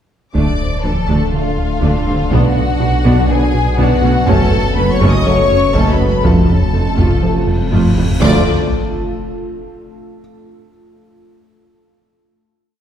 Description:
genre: cinematic, hybrid orchestral and electronic film score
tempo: 122 BPM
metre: 4/4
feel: straight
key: unclear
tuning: A4 = 440 Hz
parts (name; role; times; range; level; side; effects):
- warm symphonic violin section; melody; 0.3-8.5 s; F5 to Eb6; -23 LUFS; left 4 dB; none
- warm symphonic viola section; accompaniment; 0.3-8.5 s; G3 to F4; -22 LUFS; right 1 dB; none
- clear trombone section; sustained chords; 0.3-8.4 s; C3 to A3; -26 LUFS; right 2 dB; none
- deep dark ambient pad; sustained chords; 1.1-8.5 s; A3 to D5; -22 LUFS; equal; chorus, built-in reverb
- harp-like synth pluck; arpeggios; 0.3-8.1 s; D3 to B4; -23 LUFS; right 1 dB; none
- dark tuba; bass; 0.3-8.4 s; F1 to D2; -23 LUFS; right 2 dB; none
- rich symphonic cello section; bass; 0.3-8.5 s; D2 to D3; -23 LUFS; right 1 dB; none
- rich symphonic double bass section; bass; 0.3-8.5 s; F1 to D2; -23 LUFS; right 2 dB; none
- saturated sub bass; bass; 0.3-8.5 s; D1 to B1; -21 LUFS; equal; none
- taiko ensemble; drums; 0.3-9.2 s; none; -20 LUFS; equal; none
- rich symphonic violin section; second line; 0.4-8.5 s; F4 to Eb5; -21 LUFS; left 3 dB; none
- mellow French horn section; sustained chords; 0.4-8.4 s; A3 to B4; -26 LUFS; left 4 dB; none
- rubbery square bass; riff; 0.4-8.1 s; D2 to B3; -19 LUFS; right 1 dB; none
- felt-muted upright piano; texture; 0.6-8.2 s; F#4 to Eb5; -31 LUFS; left 2 dB; none
- cymbal swell and sub drop; sound effects; 7.5-10.2 s; none; -25 LUFS; equal; none
room: wet scoring stage reverb, RT60 1.6 s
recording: heard from further back in the room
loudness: -11 LUFS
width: side -9 dB against mid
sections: 0.3-8.2 theme; 8.2-10.2 final chord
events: cymbal swell 7.5-8.2; drum fill 7.5-8.2; impact 8.2-10.2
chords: 0.3 Dm; 2.3 Bm; 4.3 F#m; 6.2 F; 8.2 Dm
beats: | 0.35 0.84 1.33 1.82 | 2.31 2.81 3.30 3.79 | 4.28 4.77 5.27 5.76 | 6.25 6.74 7.23 7.72 | 8.22 8.71 9.20 9.69

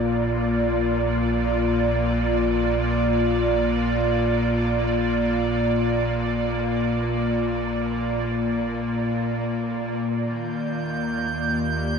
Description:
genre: ambient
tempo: free time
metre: none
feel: none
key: Bb major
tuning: A4 = 440 Hz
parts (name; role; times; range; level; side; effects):
- airy breathy pad; sustained chords; 0.0-12.0 s; Bb2 to D5; -21 LUFS; equal; chorus
- round analog bass; bass; 0.0-12.0 s; Bb1 to Eb2; -31 LUFS; right 1 dB; none
- drifting glass-harmonics texture; texture; 10.5-12.0 s; G6; -29 LUFS; right 6 dB; chorus, built-in reverb
room: wet huge ambient reverb, RT60 8.2 s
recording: in a vast, echoing space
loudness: -21 LUFS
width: side -6 dB against mid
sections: 0.0-12.0 A section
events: none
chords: 0.0 Bb; 10.2 Ebadd9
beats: free time

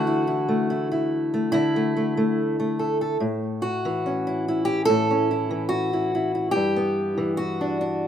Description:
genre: folk, solo fingerstyle acoustic guitar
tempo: 72 BPM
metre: 4/4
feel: straight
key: A mixolydian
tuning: A4 = 440 Hz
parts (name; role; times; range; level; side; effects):
- fingerpicked steel-string acoustic guitar; solo; 0.0-8.1 s; G2 to A4; -21 LUFS; equal; none
room: light reverb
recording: recorded outdoors, with no room sound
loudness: -21 LUFS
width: side -9 dB against mid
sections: 0.0-8.1 A section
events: none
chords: 0.0 Dsus2; 3.2 A; 6.5 Em7/G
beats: 0.70 1.54 2.37 | 3.21 4.04 4.88 5.71 | 6.55 7.38

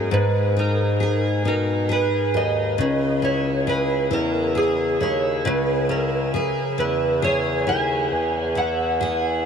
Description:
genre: six-eight pop ballad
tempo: 45 BPM (dotted quarters)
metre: 6/8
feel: straight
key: unclear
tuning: A4 = 435 Hz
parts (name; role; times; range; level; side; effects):
- picked steel-string acoustic guitar; accompaniment; 0.0-9.5 s; G#2 to G#4; -23 LUFS; left 2 dB; double-tracked left and right
- warm bassoon; bass; 0.0-9.4 s; C#2 to B2; -25 LUFS; equal; none
- electric slide guitar; melody; 0.1-9.5 s; G#4 to G#5; -23 LUFS; right 2 dB; ensemble chorus, ping-pong delay
room: moderate huge ambient reverb, RT60 7.6 s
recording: dreamy mix soaked in reverb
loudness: -19 LUFS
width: side -7 dB against mid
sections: 0.0-9.5 A section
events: none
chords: 0.0 G#m; 2.8 C#m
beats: | 0.12 1.45 | 2.78 4.11 | 5.45 6.78 | 8.11 9.45

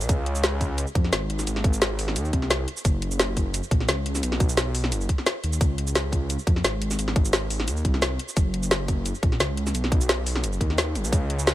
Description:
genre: liquid drum and bass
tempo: 174 BPM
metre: 4/4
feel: straight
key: unclear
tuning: A4 = 440 Hz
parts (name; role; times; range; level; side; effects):
- swelling detuned saw bass; bass; 0.0-11.5 s; Gb1 to F2; -26 LUFS; equal; tube saturation
- drum and bass drum kit; drums; 0.0-11.5 s; hi-hat, shaker, snare drum; -26 LUFS; equal; none
- electronic kick drum; drums; 0.1-11.2 s; none; -22 LUFS; equal; none
room: little or no reverb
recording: none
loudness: -22 LUFS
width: side -15 dB against mid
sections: 0.0-11.5 A section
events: kick drops out 5.3-5.6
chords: none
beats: | 0.09 0.43 0.78 1.12 | 1.47 1.81 2.16 2.50 | 2.85 3.19 3.54 3.88 | 4.23 4.57 4.92 5.26 | 5.61 5.95 6.30 6.64 | 6.99 7.33 7.68 8.02 | 8.37 8.71 9.06 9.40 | 9.75 10.09 10.44 10.78 | 11.12 11.47

